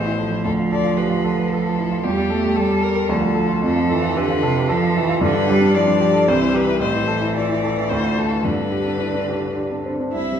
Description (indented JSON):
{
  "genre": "quick classical-period movement for piano trio",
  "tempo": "113 BPM",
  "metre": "3/4",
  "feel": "rubato",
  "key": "unclear",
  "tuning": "A4 = 440 Hz",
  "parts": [
    { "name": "warm violin", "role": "melody", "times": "0.0-10.4 s", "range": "G4 to E5", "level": "-24 LUFS", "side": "left 7 dB", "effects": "none" },
    { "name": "rich cello", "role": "second line", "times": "0.0-10.4 s", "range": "C3 to E4", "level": "-22 LUFS", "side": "right 4 dB", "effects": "none" },
    { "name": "dark baby grand piano", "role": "accompaniment", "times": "0.0-10.4 s", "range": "A1 to B4", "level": "-20 LUFS", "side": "equal", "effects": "none" }
  ],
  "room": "wet recital hall reverb, RT60 1.3 s",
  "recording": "heard from further back in the room",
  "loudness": "-17 LUFS",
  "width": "side -8 dB against mid",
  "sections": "0.0-10.1 A section",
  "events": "none",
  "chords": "0.4 Dm; 2.0 A5/E; 3.1 Dm; 3.6 F; 5.2 G; 6.3 C; 6.8 Am; 7.9 Dm7; 8.4 G"
}